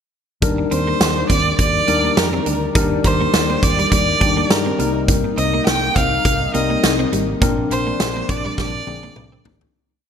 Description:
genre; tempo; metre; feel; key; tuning
1980s-style pop; 103 BPM; 4/4; swing 55% on 16ths; Eb major; A4 = 440 Hz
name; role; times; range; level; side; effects
tine electric piano; accompaniment; 0.4-9.8 s; F3 to Bb4; -22 LUFS; left 6 dB; medium stereo tremolo
chorused pulse-width pad; sustained chords; 0.4-9.7 s; C3 to D5; -28 LUFS; equal; none
vintage muted fingered electric bass; bass; 0.4-9.7 s; Ab1 to G2; -24 LUFS; equal; none
big rock drum kit; drums; 0.4-9.7 s; hi-hat, kick drum, snare drum, toms; -20 LUFS; right 1 dB; none
clean electric guitar; riff; 0.6-9.6 s; G3 to Eb4; -28 LUFS; right 5 dB; ensemble chorus
rich violin; melody; 0.7-9.4 s; Bb4 to G5; -20 LUFS; right 2 dB; none
room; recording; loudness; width
moderate plate reverb, RT60 1.6 s, small room ambience; bright 1980s-style digital production; -15 LUFS; side -7 dB against mid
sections
0.4-9.7 verse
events
fade-out 7.4-9.7; drum fill 8.6-9.7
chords
0.4 Ebmaj7; 4.8 Cm7; 7.4 Bbadd9

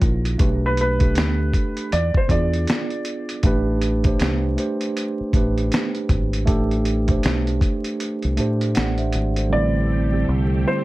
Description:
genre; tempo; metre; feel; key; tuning
lo-fi hip hop; 79 BPM; 4/4; swing 62% on 16ths; A minor; A4 = 443 Hz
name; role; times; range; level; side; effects
mellow tine electric piano; accompaniment; 0.0-10.8 s; D3 to F#5; -24 LUFS; right 2 dB; medium stereo tremolo, cassette tape, low-pass filter
deep dub fingered electric bass; bass; 0.0-10.6 s; G#1 to A2; -22 LUFS; equal; none
dusty soul sampler-style drum kit; drums; 0.0-9.5 s; hi-hat, kick drum, snare drum; -21 LUFS; equal; vintage 12-bit sampler grit
felt-muted upright piano; melody; 0.7-3.4, 9.5-10.8 s; B4 to D5; -25 LUFS; right 1 dB; low-pass filter, analog delay
string machine, violins; sustained chords; 9.5-10.8 s; A3 to G4; -30 LUFS; equal; ensemble chorus, low-pass filter
room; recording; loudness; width
light reverb; vinyl crackle; -18 LUFS; side -18 dB against mid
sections
0.0-9.5 A section; 9.5-10.8 B section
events
kick muted 8.0-9.5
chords
0.4 Gadd9/B; 1.9 E7b9; 3.4 Am9; 9.5 Am7

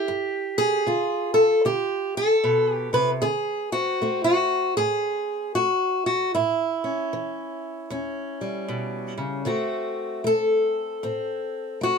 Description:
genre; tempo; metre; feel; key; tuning
acoustic country blues, solo or duo; 77 BPM; 4/4; swing 62% on 8ths; D mixolydian; A4 = 440 Hz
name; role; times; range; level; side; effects
fingerpicked steel-string acoustic guitar; solo; 0.0-12.0 s; E2 to B4; -22 LUFS; equal; none
room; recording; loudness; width
moderate booth ambience, RT60 0.2 s; minimal, uncompressed stereo recording; -22 LUFS; side -5 dB against mid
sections
0.0-9.5 A section; 9.5-12.0 B section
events
steel-string acoustic guitar solo 9.5-12.0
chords
0.1 G7; 3.2 D5; 6.3 A7; 9.5 D7

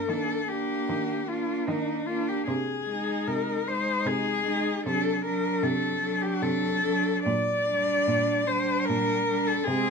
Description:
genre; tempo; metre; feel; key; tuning
classical, lyrical piece for cello ensemble; 75 BPM; 3/4; rubato; G minor; A4 = 438 Hz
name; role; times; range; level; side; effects
warm cello; melody; 0.0-9.9 s; Eb4 to D5; -27 LUFS; left 4 dB; none
warm cello; second line; 0.0-9.9 s; C4 to Eb4; -31 LUFS; right 5 dB; none
rich cello; accompaniment; 0.0-9.9 s; F#3 to Bb3; -34 LUFS; left 1 dB; none
rich cello; bass; 0.1-9.9 s; Bb2 to Eb3; -34 LUFS; right 3 dB; none
room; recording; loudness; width
moderate studio reverb, RT60 0.8 s; minimal, uncompressed stereo recording; -24 LUFS; side -5 dB against mid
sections
0.0-9.9 A section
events
none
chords
0.1 Ebmaj7; 2.5 Ab/C; 4.9 D7/C; 7.3 Gm/Bb

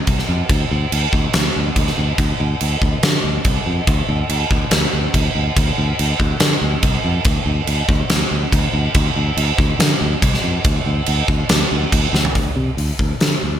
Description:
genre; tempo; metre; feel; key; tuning
hard rock; 142 BPM; 4/4; straight; D minor; A4 = 440 Hz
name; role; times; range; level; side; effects
fingered electric bass; bass; 0.1-13.6 s; C2 to D3; -19 LUFS; equal; none
huge arena drum kit; drums; 0.1-13.3 s; crash cymbal, hi-hat, kick drum, snare drum, toms; -17 LUFS; equal; gated reverb
room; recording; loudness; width
light reverb; bright 1980s-style digital production; -15 LUFS; side -10 dB against mid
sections
0.0-12.4 A section; 12.4-13.6 B section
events
drum fill 12.1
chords
none

